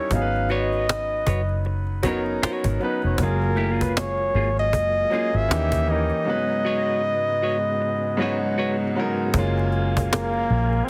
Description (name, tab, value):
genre	R&B, neo-soul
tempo	78 BPM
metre	4/4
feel	swing 59% on 16ths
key	G# dorian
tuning	A4 = 439 Hz
part	warm flugelhorn	melody	0.0-10.9 s	A#3 to E#5	-27 LUFS	equal	slapback echo
part	clear baby grand piano	accompaniment	0.0-10.9 s	G#2 to C#5	-29 LUFS	equal	none
part	vintage muted fingered electric bass	bass	0.1-10.8 s	E#1 to D#2	-27 LUFS	equal	none
part	cajon	drums	0.1-10.8 s	none	-27 LUFS	equal	none
part	semi-hollow electric guitar	second line	0.5-8.8 s	A#3 to C#5	-30 LUFS	equal	none
part	tonewheel organ	sustained chords	3.2-10.9 s	G#2 to G#5	-34 LUFS	equal	slow rotary speaker, chorus vibrato
room	moderate studio reverb, RT60 0.5 s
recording	heavily compressed radio sound, multiband compression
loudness	-23 LUFS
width	mono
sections	0.0-9.3 A section; 9.3-10.9 B section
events	none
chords	0.1 G#m11; 3.2 F#maj9; 5.5 D#7b9; 6.3 G#m11; 9.3 F#maj9